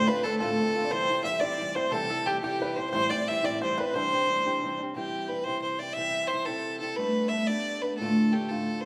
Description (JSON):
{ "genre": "celtic folk, Celtic jig", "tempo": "118 BPM (dotted quarters)", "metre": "6/8", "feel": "straight", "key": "C major", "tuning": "A4 = 440 Hz", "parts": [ { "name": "rich fiddle", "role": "melody", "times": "0.0-8.9 s", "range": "G4 to E5", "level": "-30 LUFS", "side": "equal", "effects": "none" }, { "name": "bluegrass banjo", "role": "second line", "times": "0.0-4.8 s", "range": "G4 to E5", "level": "-40 LUFS", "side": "equal", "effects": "none" }, { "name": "felt-muted upright piano", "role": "second line", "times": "0.0-4.8 s", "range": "G4 to F5", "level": "-36 LUFS", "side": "equal", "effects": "none" }, { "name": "fingerpicked old ladder-braced acoustic guitar", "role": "accompaniment", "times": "0.0-8.9 s", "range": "D2 to F4", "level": "-33 LUFS", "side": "equal", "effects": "none" } ], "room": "wet concert hall reverb, RT60 2.2 s", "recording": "recorded in a church or concert hall", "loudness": "-28 LUFS", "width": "mono", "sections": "0.0-5.0 A section; 5.0-8.9 B section", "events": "none", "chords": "0.0 Dm7; 0.9 C; 2.9 Am7; 3.9 Cadd9; 5.0 C; 7.0 Gadd9; 8.0 Dm" }